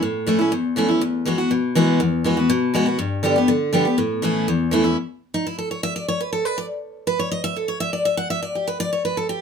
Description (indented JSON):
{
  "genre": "bluegrass",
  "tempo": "243 BPM",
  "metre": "4/4",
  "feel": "straight",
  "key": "A mixolydian",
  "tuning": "A4 = 440 Hz",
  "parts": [
    { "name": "picked steel-string acoustic guitar", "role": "solo", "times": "0.0-9.4 s", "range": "E2 to F#5", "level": "-19 LUFS", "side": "left 1 dB", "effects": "none" }
  ],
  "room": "moderate studio reverb, RT60 0.5 s",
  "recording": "minimal, uncompressed stereo recording",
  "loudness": "-19 LUFS",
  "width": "side -6 dB against mid",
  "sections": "0.0-5.0 A section; 5.0-9.4 B section",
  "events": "steel-string acoustic guitar solo 5.0-9.4",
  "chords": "0.0 A; 1.0 Eadd9; 3.0 G; 4.0 A; 5.0 N.C."
}